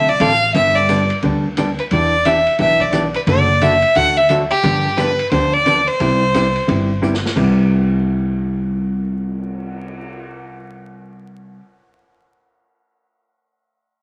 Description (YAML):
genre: country, western swing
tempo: 176 BPM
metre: 4/4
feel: swing 63% on 8ths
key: C major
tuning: A4 = 439 Hz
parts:
  - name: rich fiddle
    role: melody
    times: 0.0-7.0 s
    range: G4 to F#5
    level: -17 LUFS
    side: equal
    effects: none
  - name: hollow-body jazz guitar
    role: accompaniment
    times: 0.0-11.6 s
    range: C3 to A4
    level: -22 LUFS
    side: equal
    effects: none
  - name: upright bass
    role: bass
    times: 0.0-11.6 s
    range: E1 to D2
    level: -24 LUFS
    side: equal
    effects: none
  - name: vintage drum kit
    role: drums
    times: 0.2-10.0 s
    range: crash cymbal, cymbal swell, hi-hat, kick drum, ride cymbal, snare drum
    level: -33 LUFS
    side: equal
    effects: none
room: wet studio reverb, RT60 0.6 s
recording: vinyl crackle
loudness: -16 LUFS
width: mono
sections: 0.0-7.4 A section; 7.4-10.1 B section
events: drum fill 7.0-7.4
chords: 0.0 Dm7; 0.5 G; 1.9 Em7; 3.3 D/F#; 4.6 G7; 6.0 Cmaj7